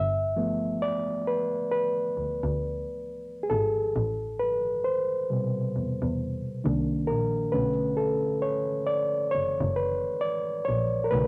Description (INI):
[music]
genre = R&B, neo-soul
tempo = 67 BPM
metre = 4/4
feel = swing 59% on 16ths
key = B phrygian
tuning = A4 = 435 Hz
[part]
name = overdriven reed electric piano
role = accompaniment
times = 0.0-11.3 s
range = B2 to E5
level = -26 LUFS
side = equal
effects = cassette tape
[part]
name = clear double bass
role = bass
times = 0.0-11.3 s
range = F#1 to E2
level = -31 LUFS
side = equal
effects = none
[sound]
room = moderate studio reverb, RT60 0.6 s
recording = home recording on cassette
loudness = -25 LUFS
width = side -27 dB against mid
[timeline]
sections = 0.0-11.3 A section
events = reed electric piano solo 0.0-11.3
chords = 0.0 G7; 3.9 Am7; 6.6 Cm9; 7.5 Bm9